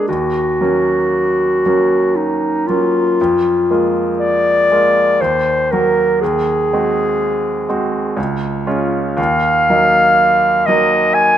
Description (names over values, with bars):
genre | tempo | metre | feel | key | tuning
classical, romantic duo for clarinet and grand piano | 59 BPM | 3/4 | uneven beats, rubato | unclear | A4 = 441 Hz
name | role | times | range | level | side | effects
warm clarinet | melody | 0.0-11.4 s | Eb4 to Ab5 | -14 LUFS | left 1 dB | none
bright grand piano | accompaniment | 0.0-11.4 s | Db2 to Gb4 | -17 LUFS | right 2 dB | none
room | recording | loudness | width
light reverb | close, detailed microphones | -12 LUFS | side -10 dB against mid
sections
0.0-11.4 A section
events
none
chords
0.1 Ebm7; 3.2 Bb7/F; 5.2 Ebm; 6.2 Ab7/Eb; 8.2 Db; 9.2 Ebm